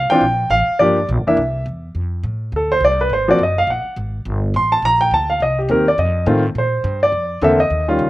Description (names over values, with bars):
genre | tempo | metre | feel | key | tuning
jazz piano trio | 209 BPM | 4/4 | swing 60% on 8ths | F major | A4 = 440 Hz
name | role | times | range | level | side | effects
warm baby grand piano | melody | 0.0-8.1 s | D3 to C6 | -15 LUFS | equal | none
upright bass | bass | 0.0-8.1 s | Gb1 to Bb2 | -22 LUFS | equal | none
room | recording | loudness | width
little or no reverb | recorded outdoors, with no room sound | -15 LUFS | side -17 dB against mid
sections
0.0-1.9 A section; 1.9-8.1 B section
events
grand piano solo 1.9-8.1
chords
0.0 Dm7 (rootless); 0.8 Gm7; 1.4 C; 1.9 F6; 3.1 Ab9; 4.2 Gmadd9; 5.4 Cm7; 6.0 F7; 6.5 Bbadd9